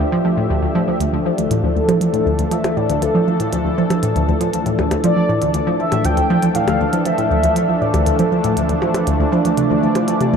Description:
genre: ambient, sequencer-driven space music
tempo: 119 BPM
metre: 4/4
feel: straight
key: D minor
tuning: A4 = 440 Hz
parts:
  - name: mellow horn-like synth lead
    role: melody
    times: 0.0-8.8 s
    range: F4 to G5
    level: -22 LUFS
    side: left 1 dB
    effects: analog chorus, shimmer reverb, ping-pong delay
  - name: sweeping resonant pad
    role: sustained chords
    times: 0.0-10.4 s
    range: E3 to E5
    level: -20 LUFS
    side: left 1 dB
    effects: chorus, shimmer reverb
  - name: analog pluck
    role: riff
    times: 0.0-10.4 s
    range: D2 to F3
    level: -18 LUFS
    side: equal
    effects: chorus, ping-pong delay
  - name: electronic hi-hat and percussion blips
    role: percussion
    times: 1.0-10.3 s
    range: none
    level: -28 LUFS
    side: left 2 dB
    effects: overdrive, ping-pong delay
  - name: vibraphone with soft mallets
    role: arpeggios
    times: 9.1-10.4 s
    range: A3 to D4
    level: -19 LUFS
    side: right 4 dB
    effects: auto-pan, shimmer reverb, ping-pong delay
room: moderate huge ambient reverb, RT60 8.7 s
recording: dark, warm production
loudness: -15 LUFS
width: side -6 dB against mid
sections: 0.0-1.0 A section; 1.0-10.4 B section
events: none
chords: 0.0 Dmadd9

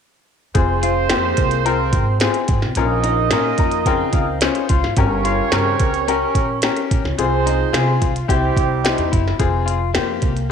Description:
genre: uptempo 1960s-style soul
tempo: 109 BPM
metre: 4/4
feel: straight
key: F minor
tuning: A4 = 436 Hz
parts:
  - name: clear grand piano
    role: accompaniment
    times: 0.5-10.5 s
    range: Db3 to Bb5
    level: -22 LUFS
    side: left 10 dB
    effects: none
  - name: upright bass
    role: bass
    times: 0.5-10.5 s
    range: F1 to C3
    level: -22 LUFS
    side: right 1 dB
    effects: none
  - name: minimal click drum kit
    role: drums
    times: 0.5-10.5 s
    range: hi-hat, kick drum, snare drum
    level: -20 LUFS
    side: right 1 dB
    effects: none
  - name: mellow horn section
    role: second line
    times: 0.6-9.1 s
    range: G3 to Eb5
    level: -22 LUFS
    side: right 14 dB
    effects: none
  - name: electric guitar through a small old amp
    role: riff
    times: 0.8-10.5 s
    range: Bb3 to F4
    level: -26 LUFS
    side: left 12 dB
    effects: wide subtle chorus
room: light reverb, studio reverb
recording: 1960s-style stereo with parts hard left and right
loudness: -15 LUFS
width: side -7 dB against mid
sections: 0.6-9.4 A section; 9.4-10.5 B section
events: grand piano fill 3.3-5.0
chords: 0.6 Fm; 2.8 Bbm; 5.0 Gdim; 7.2 Fm/C; 8.3 C; 9.4 Fm

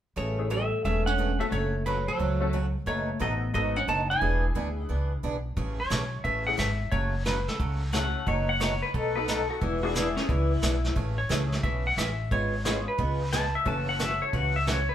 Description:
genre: country, western swing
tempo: 178 BPM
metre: 4/4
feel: swing 65% on 8ths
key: A major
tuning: A4 = 439 Hz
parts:
  - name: clean lap steel guitar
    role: melody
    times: 0.2-8.2, 11.2-13.5 s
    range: A4 to A5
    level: -30 LUFS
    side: equal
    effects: none
  - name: oud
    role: second line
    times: 0.2-5.2 s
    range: F#3 to E4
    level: -33 LUFS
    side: right 1 dB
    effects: none
  - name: picked swing-style acoustic guitar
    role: accompaniment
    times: 0.2-14.8 s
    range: B2 to G#4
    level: -34 LUFS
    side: right 3 dB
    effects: none
  - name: upright bass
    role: bass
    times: 0.2-14.9 s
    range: E1 to D2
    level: -29 LUFS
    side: equal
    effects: none
  - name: honky-tonk upright piano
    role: accompaniment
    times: 0.4-14.6 s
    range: A3 to A4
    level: -36 LUFS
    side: left 5 dB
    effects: none
  - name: vintage brush drum kit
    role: drums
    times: 5.6-14.9 s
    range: brushed snare drum, hi-hat, kick drum, snare drum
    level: -32 LUFS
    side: equal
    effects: none
  - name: pedal steel guitar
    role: second line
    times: 7.9-10.9, 13.3-14.9 s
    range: C#4 to A5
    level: -29 LUFS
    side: left 4 dB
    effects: none
room: moderate studio reverb, RT60 0.9 s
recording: band playing live in one room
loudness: -25 LUFS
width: side -10 dB against mid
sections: 0.2-5.6 A section; 5.6-14.9 B section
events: none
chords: 0.2 Amaj7; 1.5 F#m; 2.9 B7/F#; 4.2 E7; 5.6 Amaj7; 6.9 F#m; 8.3 B7/F#; 9.6 E7; 11.0 Amaj7; 12.3 C#7/G#; 13.7 F#m7

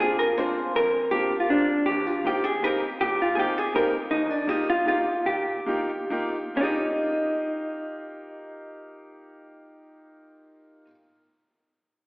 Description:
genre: musette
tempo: 123-163 BPM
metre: 3/4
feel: straight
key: Eb major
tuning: A4 = 439 Hz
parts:
  - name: vintage hollow-body jazz guitar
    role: melody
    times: 0.0-10.8 s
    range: D4 to C5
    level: -24 LUFS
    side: equal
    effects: none
  - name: bright upright piano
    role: accompaniment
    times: 0.0-10.9 s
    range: Eb2 to G4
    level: -30 LUFS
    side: equal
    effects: none
room: wet concert hall reverb, RT60 2.0 s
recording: heard from further back in the room, AM radio sound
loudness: -22 LUFS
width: side -31 dB against mid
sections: 0.0-6.6 A section; 6.6-9.5 B section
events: slowing down 4.1-6.6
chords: 0.0 Bbadd9; 1.9 Eb6; 4.1 Ebadd9

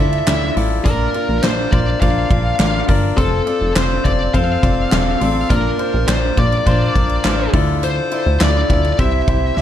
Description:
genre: piano-driven pop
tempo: 103 BPM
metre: 4/4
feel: straight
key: unclear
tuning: A4 = 438 Hz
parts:
  - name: high-gain lead guitar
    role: melody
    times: 0.0-9.6 s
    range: A4 to F5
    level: -21 LUFS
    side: equal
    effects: distortion
  - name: clear concert grand piano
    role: accompaniment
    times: 0.0-9.6 s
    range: Bb2 to F5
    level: -20 LUFS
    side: left 4 dB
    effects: none
  - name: plucky analog bass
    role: bass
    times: 0.0-9.6 s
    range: E1 to D2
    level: -19 LUFS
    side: equal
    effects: none
  - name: huge arena drum kit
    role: drums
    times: 0.1-9.6 s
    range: handclaps, hi-hat, kick drum, ride cymbal, snare drum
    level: -19 LUFS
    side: equal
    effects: none
room: light reverb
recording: dark, warm production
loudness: -14 LUFS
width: side -10 dB against mid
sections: 0.0-9.6 A section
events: none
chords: 0.0 Dmadd9; 0.9 Bb; 3.2 F; 5.5 Bb; 7.5 Dmadd9; 9.0 C

